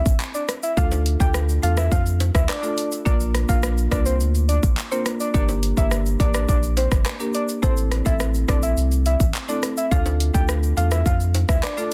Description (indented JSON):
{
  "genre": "dancehall",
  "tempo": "105 BPM",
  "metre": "4/4",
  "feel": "straight",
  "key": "unclear",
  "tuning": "A4 = 441 Hz",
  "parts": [
    { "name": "warm sub bass", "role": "bass", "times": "0.1-11.6 s", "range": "G1 to F2", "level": "-23 LUFS", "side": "equal", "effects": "none" },
    { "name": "pop drum kit", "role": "drums", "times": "0.1-11.9 s", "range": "handclaps, hi-hat, kick drum, rim click, shaker", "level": "-24 LUFS", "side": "equal", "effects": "soft clipping on snare" },
    { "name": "egg shaker and timbales", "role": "percussion", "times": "0.1-11.9 s", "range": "none", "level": "-38 LUFS", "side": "equal", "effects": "none" },
    { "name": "soft octave-layered synth lead", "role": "melody", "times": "0.3-11.9 s", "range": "C5 to G5", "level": "-29 LUFS", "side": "equal", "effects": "chorus, digital delay" },
    { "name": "marimba with medium mallets", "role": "accompaniment", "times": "0.8-11.9 s", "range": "A3 to Bb4", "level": "-31 LUFS", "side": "equal", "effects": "none" }
  ],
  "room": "little or no reverb",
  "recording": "dense, heavily limited modern master",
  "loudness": "-21 LUFS",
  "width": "mono",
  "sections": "0.0-11.9 A section",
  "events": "none",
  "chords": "0.0 A5; 0.8 Dm; 3.1 Bb; 5.3 Gm; 7.6 Am; 9.9 Dm",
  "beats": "0.20 | 0.77 1.34 1.92 2.49 | 3.06 3.63 4.20 4.77 | 5.34 5.92 6.49 7.06 | 7.63 8.20 8.77 9.35 | 9.92 10.49 11.06 11.63"
}